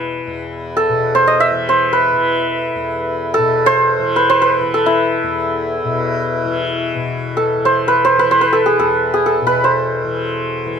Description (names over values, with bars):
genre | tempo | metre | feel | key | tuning
indian classical, Hindustani | free time | none | none | unclear | A4 = 440 Hz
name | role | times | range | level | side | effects
santur | melody | 0.0-10.8 s | E4 to E5 | -14 LUFS | right 1 dB | none
tanpura | drone | 0.0-10.8 s | E2 to E3 | -22 LUFS | left 4 dB | none
room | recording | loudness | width
light reverb | close, detailed microphones | -13 LUFS | side -7 dB against mid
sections
0.0-6.9 A section; 6.9-10.8 A section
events
none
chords
none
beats
free time